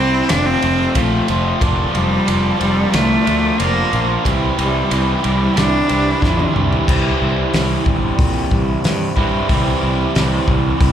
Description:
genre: quiet-loud alternative rock.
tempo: 91 BPM.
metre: 4/4.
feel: straight.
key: unclear.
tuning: A4 = 440 Hz.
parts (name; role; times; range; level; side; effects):
bright cello; melody; 0.0-6.6 s; F3 to D4; -18 LUFS; equal; slapback echo, tape echo.
raw garage guitar; riff; 0.0-10.9 s; C3 to F4; -19 LUFS; right 1 dB; overdrive, slapback echo.
fuzz fingered electric bass; bass; 0.0-10.9 s; F1 to Bb2; -20 LUFS; equal; overdrive.
loose indie drum kit; drums; 0.3-10.9 s; crash cymbal, hi-hat, kick drum, ride cymbal, snare drum, toms; -20 LUFS; equal; none.
room: studio reverb.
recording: live gig heard through the venue's PA, club reverb.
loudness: -14 LUFS.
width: side -9 dB against mid.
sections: 0.0-6.9 A section; 6.9-10.9 B section.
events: half time 0.0-6.9; drum fill 6.2-6.9.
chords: 0.3 F; 1.6 Bb/F; 4.2 Cadd9; 6.9 C.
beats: 0.31 0.96 | 1.62 2.28 2.94 3.59 | 4.25 4.91 5.57 6.22 | 6.88 7.54 8.19 8.85 | 9.51 10.16 10.81.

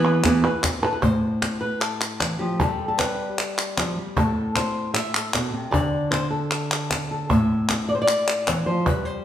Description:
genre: flamenco.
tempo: 153 BPM.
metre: 4/4.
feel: straight.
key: A minor.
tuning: A4 = 440 Hz.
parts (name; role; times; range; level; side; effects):
flamenco guitar; melody; 0.0-9.2 s; A2 to E5; -22 LUFS; equal; none.
palmas hand claps; percussion; 0.0-9.1 s; none; -26 LUFS; equal; none.
cajon; percussion; 0.2-9.1 s; none; -28 LUFS; left 2 dB; none.
room: wet large studio reverb, RT60 1.2 s.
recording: band playing live in one room.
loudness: -20 LUFS.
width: side -10 dB against mid.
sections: 0.0-1.0 A section; 1.0-9.2 B section.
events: none.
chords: 0.0 E; 1.0 Am; 2.6 G; 4.2 Am; 5.7 D5; 7.3 A5.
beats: 0.24 0.63 | 1.03 1.42 1.81 2.21 | 2.60 2.99 3.38 3.77 | 4.17 4.56 4.95 5.34 | 5.74 6.13 6.52 6.91 | 7.30 7.69 8.08 8.47 | 8.87.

